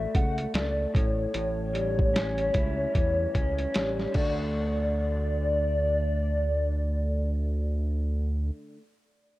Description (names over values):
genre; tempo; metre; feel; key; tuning
indie pop, bedroom pop; 75 BPM; 4/4; swing 60% on 16ths; D major; A4 = 440 Hz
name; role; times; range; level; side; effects
warbly nostalgic lead; melody; 0.0-8.5 s; C#5 to F#5; -30 LUFS; left 1 dB; ensemble chorus, analog delay
electric guitar through a small old amp; accompaniment; 0.0-8.8 s; A2 to F#4; -34 LUFS; left 1 dB; wide subtle chorus, vibrato effect
chorused synth bass; bass; 0.0-8.5 s; A1 to E2; -28 LUFS; equal; none
lo-fi sampler-style drum kit; drums; 0.1-4.4 s; crash cymbal, hi-hat, kick drum, snare drum; -28 LUFS; equal; none
room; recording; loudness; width
light reverb, digital ambience; none; -25 LUFS; side -17 dB against mid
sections
0.0-4.5 A section; 4.5-7.7 B section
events
none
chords
0.0 Dmaj7; 0.9 A7; 4.1 D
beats
0.55 | 1.35 2.15 2.95 3.75 | 4.55 5.35 6.15 6.95